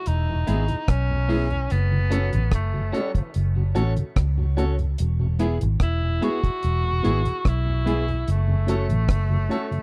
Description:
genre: roots reggae.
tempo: 73 BPM.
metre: 4/4.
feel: straight.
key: E major.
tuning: A4 = 440 Hz.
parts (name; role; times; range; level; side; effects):
breathy tenor saxophone; melody; 0.0-9.8 s; A3 to F#4; -32 LUFS; equal; dub echo.
vintage muted fingered electric bass; bass; 0.1-9.5 s; E1 to C#2; -24 LUFS; equal; none.
deep reggae drum kit; drums; 0.1-9.8 s; hi-hat, kick drum, rim click; -25 LUFS; equal; none.
mellow tonewheel organ; accompaniment; 0.3-9.8 s; E2 to F#4; -32 LUFS; equal; chorus vibrato, stopped rotary speaker, dub echo.
clean electric guitar; accompaniment; 0.5-9.7 s; B3 to C#5; -36 LUFS; equal; dub echo.
clear upright piano; stabs; 0.5-9.6 s; B3 to A4; -34 LUFS; equal; none.
room: small room ambience.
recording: dry, close 1970s-style studio recording.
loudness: -23 LUFS.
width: mono.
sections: 0.0-9.8 A section.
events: none.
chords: 0.0 E; 1.7 F#m; 5.0 E; 8.3 F#m.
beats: 0.06 0.88 | 1.70 2.52 3.35 4.17 | 4.99 5.81 6.63 7.45 | 8.27 9.09.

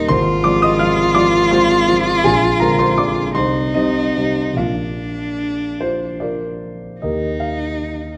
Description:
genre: classical, romantic duo for cello and grand piano.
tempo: 48-57 BPM (dotted quarters).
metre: 6/8.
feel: rubato.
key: Eb major.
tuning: A4 = 439 Hz.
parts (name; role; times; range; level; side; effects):
rich cello; melody; 0.0-8.2 s; D4 to F4; -20 LUFS; equal; none.
dark concert grand piano; accompaniment; 0.0-8.2 s; Eb1 to F6; -20 LUFS; equal; none.
room: wet recital hall reverb, RT60 1.5 s.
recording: none.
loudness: -17 LUFS.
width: mono.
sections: 0.0-7.0 A section; 7.0-8.2 B section.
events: none.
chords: 0.1 Fm/Ab; 2.2 Bb9; 3.4 Cm; 4.6 Bb; 7.0 Eb.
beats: | 0.11 1.17 | 2.24 3.36 | 4.58 5.81 | 7.02 8.16.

